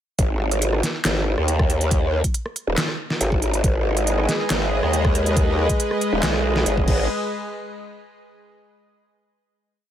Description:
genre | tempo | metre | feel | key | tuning
heavy wobble dubstep | 139 BPM | 4/4 | half-time | G# minor | A4 = 440 Hz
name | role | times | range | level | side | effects
growl bass | bass | 0.2-7.1 s | D#1 to D#2 | -20 LUFS | equal | chorus, overdrive
dubstep drum kit | drums | 0.2-7.0 s | crash cymbal, handclaps, hi-hat, rim click, snare drum | -25 LUFS | equal | none
electronic kick drum | drums | 0.2-7.0 s | none | -21 LUFS | equal | overdrive
supersaw pad | sustained chords | 3.6-7.1 s | G#3 to D#5 | -24 LUFS | equal | sidechain pumping
room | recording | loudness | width
little or no reverb | none | -18 LUFS | side -10 dB against mid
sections
0.2-7.1 drop; 7.1-8.8 final hit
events
drop 0.2-7.1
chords
0.2 G#m; 7.1 N.C.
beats
| 0.19 0.62 1.05 1.48 | 1.91 2.34 2.78 3.21 | 3.64 4.07 4.50 4.93 | 5.37 5.80 6.23 6.66

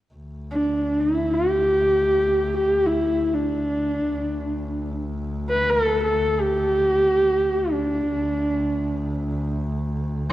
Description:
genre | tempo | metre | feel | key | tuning
mongolian traditional | free time | none | none | D zhi mode | A4 = 438 Hz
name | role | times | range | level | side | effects
clear double bass | drone | 0.1-10.3 s | D2 | -28 LUFS | equal | none
dark horsehead fiddle | melody | 0.5-10.3 s | D4 to B4 | -20 LUFS | equal | none
room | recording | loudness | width
wet concert hall reverb, RT60 2.0 s | worn, warbling old tape, cassette tape, warbly pitch drift | -20 LUFS | side -14 dB against mid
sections
0.1-10.3 A section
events
none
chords
none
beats
free time

